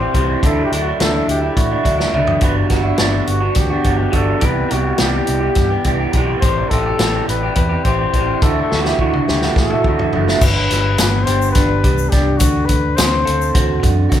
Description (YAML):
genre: psychedelic rock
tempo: 210 BPM (eighths)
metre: 7/8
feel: straight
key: unclear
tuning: A4 = 440 Hz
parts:
  - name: warm flugelhorn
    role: melody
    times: 0.0-13.8 s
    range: E4 to C5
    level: -22 LUFS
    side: left 4 dB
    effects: none
  - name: electric guitar through a small old amp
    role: riff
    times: 0.0-14.2 s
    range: G2 to A4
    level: -18 LUFS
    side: right 2 dB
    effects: phaser
  - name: fingered electric bass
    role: bass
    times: 0.0-14.2 s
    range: F#1 to A2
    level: -20 LUFS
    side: equal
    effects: none
  - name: vintage drum kit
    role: drums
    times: 0.1-14.2 s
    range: crash cymbal, hi-hat, kick drum, snare drum, toms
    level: -18 LUFS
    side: equal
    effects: none
  - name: egg shaker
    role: percussion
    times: 10.4-14.2 s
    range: none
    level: -29 LUFS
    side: left 9 dB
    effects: none
room: light reverb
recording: band playing live in one room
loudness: -13 LUFS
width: side -10 dB against mid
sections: 0.0-10.4 A section; 10.4-14.2 B section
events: drum fill 2.0-2.4, 8.7-10.4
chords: 0.4 Dadd9; 2.4 Gmaj7; 4.4 Cmaj7; 6.4 Am7; 8.4 Dadd9; 10.4 G; 12.4 D7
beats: 0.14 | 0.43 0.71 1.00 1.28 1.57 1.85 2.14 | 2.42 2.71 2.99 3.28 3.56 3.85 4.13 | 4.42 4.71 4.99 5.28 5.56 5.85 6.13 | 6.42 6.71 6.99 7.28 7.56 7.85 8.13 | 8.42 8.71 8.99 9.28 9.56 9.85 10.13 | 10.42 10.70 10.99 11.27 11.56 11.84 12.13 | 12.41 12.70 12.98 13.27 13.55 13.84 14.12